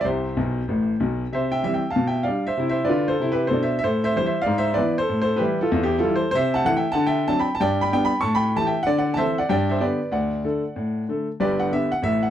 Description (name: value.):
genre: jazz, stride piano.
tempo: 191 BPM.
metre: 4/4.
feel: swing 63% on 8ths.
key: C major, G major from 6.3 s.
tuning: A4 = 440 Hz.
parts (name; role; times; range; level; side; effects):
clear grand piano; solo; 0.0-12.3 s; G1 to C#6; -20 LUFS; equal; none.
room: moderate booth ambience, RT60 0.2 s.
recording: dry, close 1970s-style studio recording.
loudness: -20 LUFS.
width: side -10 dB against mid.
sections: 0.0-1.3 A section; 1.3-11.4 B section.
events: grand piano fill 0.4-1.3.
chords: 0.1 C5; 1.3 C; 1.9 G7/B; 3.8 Am7; 4.5 E7/G#; 5.1 A5; 6.3 Am/C; 7.0 D7; 7.6 G; 8.2 A5; 8.9 Dsus2; 9.5 G; 10.1 D; 11.4 G.